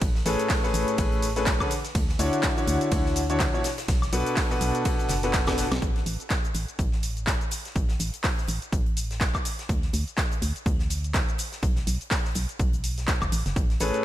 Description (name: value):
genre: piano house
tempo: 124 BPM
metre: 4/4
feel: swing 57% on 16ths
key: unclear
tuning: A4 = 441 Hz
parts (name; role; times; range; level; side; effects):
- organ-like FM bass; bass; 0.0-13.9 s; F#1 to D2; -29 LUFS; equal; sidechain pumping
- electronic kick drum; drums; 0.0-13.7 s; none; -26 LUFS; equal; none
- house drum kit; drums; 0.0-14.0 s; handclaps, hi-hat, ride cymbal, shaker, snare drum, woodblock; -31 LUFS; equal; overdrive
- huge arena drum kit; drums; 0.0-13.9 s; hi-hat, snare drum; -40 LUFS; left 2 dB; high-pass filter on hats, high-pass filter on snare, high-pass filter on room
- bright concert grand piano; riff; 0.3-5.6, 13.8-14.0 s; A2 to C#5; -26 LUFS; left 1 dB; sidechain pumping, ping-pong delay
room: studio ambience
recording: none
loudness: -23 LUFS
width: side -13 dB against mid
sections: 0.0-5.8 A section; 5.8-14.0 B section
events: drop 0.0-5.8; drum fill 5.5-5.8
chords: 0.0 Amaj9; 1.7 Dmaj9; 3.6 Bm7; 5.8 N.C.; 11.4 B5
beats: | 0.01 0.50 0.98 1.47 | 1.95 2.43 2.92 3.40 | 3.89 4.37 4.85 5.34 | 5.82 6.30 6.79 7.27 | 7.76 8.24 8.72 9.21 | 9.69 10.18 10.66 11.14 | 11.63 12.11 12.60 13.08 | 13.56 14.05